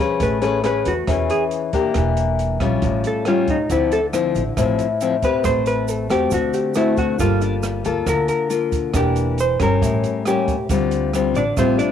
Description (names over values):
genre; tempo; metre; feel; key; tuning
bossa nova; 137 BPM; 4/4; straight; unclear; A4 = 436 Hz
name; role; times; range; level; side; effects
nylon-string guitar; accompaniment; 0.0-11.9 s; A2 to B4; -20 LUFS; left 6 dB; cassette tape
vintage hollow-body jazz guitar; melody; 0.2-11.9 s; C4 to D5; -22 LUFS; right 2 dB; cassette tape
upright bass; bass; 0.2-11.8 s; E1 to E2; -24 LUFS; right 3 dB; none
open jazz drum kit; drums; 0.2-11.9 s; hi-hat, kick drum, rim click; -27 LUFS; right 3 dB; cassette tape
tube shaker; percussion; 3.7-11.9 s; none; -38 LUFS; right 16 dB; none
room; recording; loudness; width
light reverb, small room ambience; home recording on cassette; -17 LUFS; side -9 dB against mid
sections
0.0-11.9 A section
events
hollow-body jazz guitar solo 0.0-11.9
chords
0.2 Amaj9; 1.9 Em7b5; 2.8 Aaug7; 3.7 Dm9; 5.4 Am9; 6.3 D7; 7.2 Gm9; 8.9 Em7b5; 9.8 A7b9; 10.7 Dm7